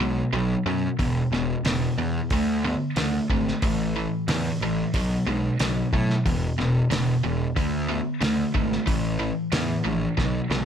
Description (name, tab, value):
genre	classic rock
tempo	91 BPM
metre	4/4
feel	straight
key	unclear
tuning	A4 = 440 Hz
part	cranked stack guitar	riff	0.0-10.7 s	E2 to B3	-24 LUFS	equal	overdrive
part	fuzz picked electric bass	bass	0.0-10.7 s	E1 to A2	-28 LUFS	equal	overdrive
part	cloth-damped thuddy drum kit	drums	1.0-10.7 s	hi-hat, kick drum, snare drum	-27 LUFS	equal	none
room	light reverb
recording	none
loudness	-22 LUFS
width	side -8 dB against mid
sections	0.0-10.7 A section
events	drum fill 10.2-10.7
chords	0.0 B5; 1.0 E5; 2.3 D5; 3.6 A5; 4.9 B5; 6.3 E5; 7.6 D5; 8.9 A5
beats	0.33 | 0.99 1.65 2.31 2.97 | 3.63 4.29 4.94 5.60 | 6.25 6.91 7.57 8.22 | 8.87 9.53 10.18